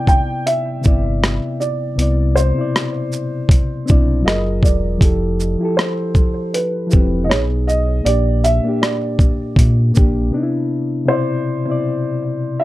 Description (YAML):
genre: lo-fi hip hop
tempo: 79 BPM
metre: 4/4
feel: swing 57% on 16ths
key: C major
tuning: A4 = 441 Hz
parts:
  - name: felt-muted upright piano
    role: melody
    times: 0.0-12.6 s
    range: B4 to G5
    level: -22 LUFS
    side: right 1 dB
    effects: low-pass filter, analog delay, plate reverb
  - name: mellow reed electric piano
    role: accompaniment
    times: 0.0-12.6 s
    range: Bb2 to D5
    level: -20 LUFS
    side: left 2 dB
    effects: cassette tape, low-pass filter
  - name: boom bap sampler-style drum kit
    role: drums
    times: 0.1-10.2 s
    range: hi-hat, kick drum, rim click, shaker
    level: -14 LUFS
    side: equal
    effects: none
  - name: sub bass with octave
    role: bass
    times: 0.9-10.3 s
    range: E1 to Bb2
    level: -17 LUFS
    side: equal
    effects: none
room: light reverb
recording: dark, warm production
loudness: -14 LUFS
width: side -16 dB against mid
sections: 0.0-11.1 A section; 11.1-12.6 B section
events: break 10.3-11.1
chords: 0.0 Cmaj9; 4.2 F#maj9; 5.0 Fmaj9; 7.3 B6; 8.0 Bb6; 10.3 Cmaj9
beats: 0.45 1.21 | 1.97 2.73 3.49 4.25 | 5.01 5.77 6.53 7.29 | 8.04 8.80 9.56 10.32 | 11.08 11.84 12.60